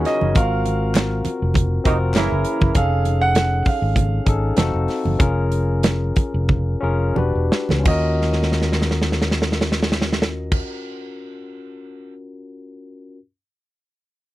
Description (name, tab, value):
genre	lush 1970s-style soul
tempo	85-100 BPM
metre	4/4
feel	swing 54% on 16ths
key	Eb minor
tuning	A4 = 440 Hz
part	clear grand piano	melody	0.0-10.6 s	Eb5 to Gb5	-25 LUFS	right 3 dB	none
part	barky tine electric piano	accompaniment	0.0-13.2 s	C4 to B4	-25 LUFS	left 3 dB	none
part	mellow horn section	stabs	0.0-2.7 s	Bb2 to Fb4	-25 LUFS	right 9 dB	none
part	fingered electric bass	bass	0.0-10.6 s	E1 to Eb2	-21 LUFS	equal	none
part	modern studio drum kit	drums	0.1-12.1 s	crash cymbal, hi-hat, kick drum, snare drum	-20 LUFS	equal	none
part	congas	percussion	0.2-10.6 s	none	-26 LUFS	right 4 dB	none
part	group handclap	percussion	1.0-2.3 s	none	-34 LUFS	left 5 dB	none
room	little or no reverb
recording	dry, close 1970s-style studio recording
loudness	-17 LUFS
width	side -16 dB against mid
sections	0.0-7.9 A section; 7.9-10.7 B section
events	slowing down 2.7-7.9; drum fill 6.5-7.9, 8.2-10.5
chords	0.3 Ab13; 2.1 Gb9; 2.7 F7alt; 4.6 F7b9; 5.2 Bbm7/F; 7.2 Em9; 7.9 Ebm9